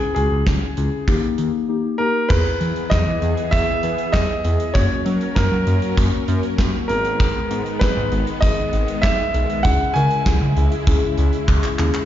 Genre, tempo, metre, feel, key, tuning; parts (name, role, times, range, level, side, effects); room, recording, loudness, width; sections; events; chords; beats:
synth-pop; 98 BPM; 4/4; straight; A4 = 443 Hz
clear grand piano; melody; 0.0-10.5 s; G#4 to G#5; -23 LUFS; right 1 dB; tape echo
muted felt-like synth keys; accompaniment; 0.0-12.1 s; A#3 to B4; -25 LUFS; left 4 dB; chorus
smooth synth bass; bass; 0.2-11.9 s; G#1 to F#3; -21 LUFS; equal
gated 80s drum kit; drums; 0.2-12.1 s; crash cymbal, handclaps, hi-hat, kick drum, snare drum; -20 LUFS; equal
string machine, violas; sustained chords; 2.3-12.1 s; C#3 to A#4; -27 LUFS; equal; ensemble chorus
light reverb, small room ambience; played on a big sound system in a bare room, stone room reverb, nothing above 7.5 kHz; -17 LUFS; side -11 dB against mid
0.0-2.3 A section; 2.3-12.1 B section
silent gap 1.7-2.3; drum fill 11.5-12.1
0.0 C#m; 1.1 D#; 2.3 E; 4.8 F#; 6.9 G#m; 9.6 C#m
0.47 1.08 1.69 | 2.30 2.91 3.53 4.14 | 4.75 5.36 5.97 6.59 | 7.20 7.81 8.42 9.04 | 9.65 10.26 10.87 11.49